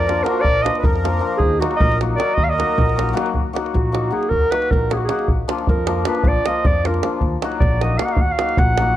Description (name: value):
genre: balkan folk, Balkan wedding band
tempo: 310 BPM (eighths)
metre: 5/8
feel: straight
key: Eb harmonic minor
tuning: A4 = 437 Hz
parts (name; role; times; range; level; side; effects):
- warm clarinet; melody; 0.0-9.0 s; Gb4 to Gb5; -21 LUFS; right 2 dB; none
- accordion; second line; 0.0-3.2 s; Eb4 to D5; -26 LUFS; equal; light tremolo tuning
- hammered dulcimer; accompaniment; 0.0-9.0 s; F3 to Gb4; -24 LUFS; left 6 dB; none
- upright bass; bass; 0.0-8.9 s; Bb1 to F2; -22 LUFS; equal; none
- davul; percussion; 0.1-8.9 s; none; -20 LUFS; right 1 dB; none
room: studio ambience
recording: dry, close 1970s-style studio recording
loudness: -16 LUFS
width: side -12 dB against mid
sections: 0.0-3.3 A section; 3.3-9.0 B section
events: clarinet solo 3.3-9.0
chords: 0.0 Bb; 1.4 Ebm; 5.3 Bb; 7.2 Ebm